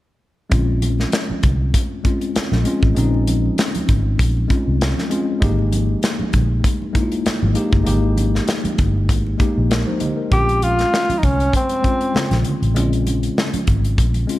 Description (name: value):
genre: lush 1970s-style soul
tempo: 98 BPM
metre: 4/4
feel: swing 54% on 16ths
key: Bb dorian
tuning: A4 = 439 Hz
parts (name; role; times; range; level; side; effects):
- tine electric piano; accompaniment; 0.5-14.4 s; Db3 to Eb5; -22 LUFS; left 2 dB; medium stereo tremolo
- vintage muted fingered electric bass; bass; 0.5-14.2 s; G1 to C2; -19 LUFS; equal; none
- modern studio drum kit; drums; 0.5-14.4 s; hi-hat, kick drum, snare drum; -20 LUFS; equal; none
- congas; percussion; 0.5-14.3 s; none; -29 LUFS; right 4 dB; none
- breathy tenor saxophone; melody; 10.3-12.4 s; C4 to G4; -19 LUFS; equal; none
room: light reverb, small room ambience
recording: none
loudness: -16 LUFS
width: side -16 dB against mid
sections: 0.5-10.3 A section; 10.3-14.4 B section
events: none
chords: 0.5 Bbm9; 5.4 Fm11; 10.3 Bbm9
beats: | 0.52 1.13 1.74 2.36 | 2.97 3.58 4.19 4.81 | 5.42 6.03 6.64 7.25 | 7.87 8.48 9.09 9.70 | 10.31 10.92 11.54 12.15 | 12.76 13.37 13.98